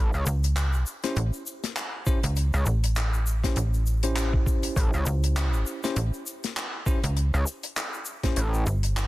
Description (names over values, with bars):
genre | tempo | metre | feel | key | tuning
glitch hop | 100 BPM | 4/4 | swing 57% on 16ths | unclear | A4 = 442 Hz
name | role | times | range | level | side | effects
gritty driven synth bass | bass | 0.0-8.6 s | A1 to C#2 | -24 LUFS | equal | tube saturation
egg shaker | percussion | 0.1-9.1 s | none | -39 LUFS | left 3 dB | none
slap-like FM bass | bass | 0.3-9.1 s | G1 to C#2 | -24 LUFS | equal | none
damped 70s drum kit | drums | 0.4-9.1 s | handclaps, hi-hat, snare drum | -32 LUFS | left 2 dB | small room ambience
bell-like tine electric piano | stabs | 1.0-8.4 s | C#4 to B#4 | -34 LUFS | left 1 dB | medium stereo tremolo, vintage 12-bit sampler grit, sidechain pumping, digital delay
electronic kick drum | drums | 2.1-8.3 s | none | -25 LUFS | equal | small room ambience
room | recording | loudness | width
small room ambience | dense, heavily limited modern master | -24 LUFS | side -18 dB against mid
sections
0.0-9.1 A section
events
none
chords
0.0 A7#9